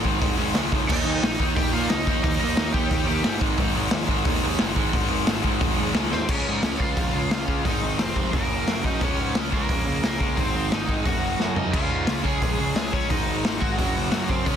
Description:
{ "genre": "punk rock", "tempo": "176 BPM", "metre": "4/4", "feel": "straight", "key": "unclear", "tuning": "A4 = 442 Hz", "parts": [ { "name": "crunchy overdriven guitar", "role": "riff", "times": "0.0-14.6 s", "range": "Gb2 to Eb4", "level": "-28 LUFS", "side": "right 16 dB", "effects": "none" }, { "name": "distorted electric guitar", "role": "riff", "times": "0.0-14.6 s", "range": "Gb2 to Eb4", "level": "-29 LUFS", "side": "left 14 dB", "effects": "distortion" }, { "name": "raw garage drum kit", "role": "drums", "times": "0.0-14.5 s", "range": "crash cymbal, hi-hat, kick drum, snare drum, toms", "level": "-24 LUFS", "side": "equal", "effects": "none" }, { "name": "fuzz picked electric bass", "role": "bass", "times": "0.1-14.6 s", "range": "F1 to Bb2", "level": "-29 LUFS", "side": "equal", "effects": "overdrive" }, { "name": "crunchy overdriven guitar", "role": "melody", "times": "0.9-3.4, 6.1-14.6 s", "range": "Bb3 to Ab5", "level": "-29 LUFS", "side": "equal", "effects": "none" } ], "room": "little or no reverb", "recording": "dense, heavily limited modern master", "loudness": "-21 LUFS", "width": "side -8 dB against mid", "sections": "0.0-6.3 A section; 6.3-14.6 B section", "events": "drum fill 6.1, 11.4-11.7", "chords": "0.0 Ab5; 0.9 Eb; 3.4 Ab5; 6.3 Db; 7.6 Ab; 8.3 Gb; 9.0 Db5; 10.4 Ab; 11.1 Gb5; 11.7 Db; 13.1 Ab5; 13.8 Gb5" }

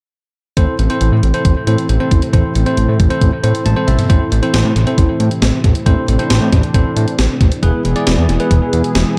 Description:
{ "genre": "synth-pop", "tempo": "136 BPM", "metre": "4/4", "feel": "straight", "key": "A minor", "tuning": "A4 = 439 Hz", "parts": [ { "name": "barky tine electric piano", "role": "accompaniment", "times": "0.6-8.9 s", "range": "B3 to A5", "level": "-21 LUFS", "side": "equal", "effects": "analog delay" }, { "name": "warm analog pad", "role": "sustained chords", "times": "0.6-9.2 s", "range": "A2 to G#4", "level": "-23 LUFS", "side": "equal", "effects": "chorus" }, { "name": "fat analog bass", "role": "bass", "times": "0.6-9.0 s", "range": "E1 to A2", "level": "-16 LUFS", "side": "equal", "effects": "none" }, { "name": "gated 80s digital drum machine", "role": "drums", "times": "0.6-9.1 s", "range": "hi-hat, kick drum, snare drum, toms", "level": "-18 LUFS", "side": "equal", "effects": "gated reverb, gated reverb snare, analog delay" } ], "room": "light reverb, digital ambience", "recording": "echo-heavy mix", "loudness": "-14 LUFS", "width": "mono", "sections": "0.6-4.1 A section; 4.1-9.2 B section", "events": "tine electric piano fill 3.4-4.1; drum fill 3.7-4.1", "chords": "0.6 Am; 7.6 E" }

